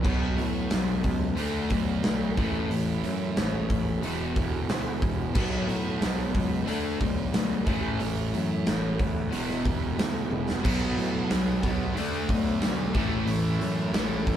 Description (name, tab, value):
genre	classic rock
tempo	91 BPM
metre	4/4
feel	straight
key	unclear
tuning	A4 = 441 Hz
part	crunchy overdriven guitar	riff	0.0-14.4 s	E2 to D4	-31 LUFS	left 5 dB	none
part	sludgy distorted guitar	riff	0.0-14.4 s	E2 to D4	-31 LUFS	right 6 dB	overdrive
part	fuzz picked electric bass	bass	0.0-14.4 s	E1 to A2	-32 LUFS	equal	overdrive
part	big rock drum kit	drums	0.0-14.4 s	crash cymbal, hi-hat, kick drum, snare drum, toms	-29 LUFS	equal	none
part	distorted electric guitar	riff	10.6-14.4 s	A2 to D4	-34 LUFS	equal	overdrive
room	light reverb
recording	band playing live in one room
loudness	-24 LUFS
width	side -10 dB against mid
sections	0.0-14.4 A section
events	drum fill 10.3-10.6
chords	0.0 B5; 1.4 D5; 2.4 A5; 4.0 E5; 5.4 B5; 6.7 D5; 7.7 A5; 9.3 E5; 10.6 B5; 12.0 D5; 13.0 A5